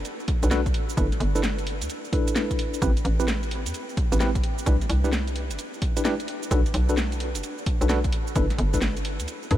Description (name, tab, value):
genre	UK garage, two-step garage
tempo	130 BPM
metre	4/4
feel	swing 64% on 16ths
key	unclear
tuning	A4 = 440 Hz
part	hollow knocking FM bass	bass	0.0-9.6 s	F#1 to G2	-25 LUFS	equal	none
part	garage drum kit	drums	0.1-9.6 s	hi-hat, shaker, snare drum	-31 LUFS	right 1 dB	none
part	electronic kick drum	drums	0.3-9.6 s	none	-25 LUFS	equal	none
part	tine electric piano	stabs	0.4-9.6 s	C4 to B4	-29 LUFS	left 1 dB	overdrive, fast stereo tremolo, tape echo
room	light reverb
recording	none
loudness	-22 LUFS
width	side -13 dB against mid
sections	0.0-9.6 A section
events	none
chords	0.0 Bm7; 0.7 G69; 2.8 Am9; 4.4 Cmaj9; 6.3 Bm7; 8.1 G69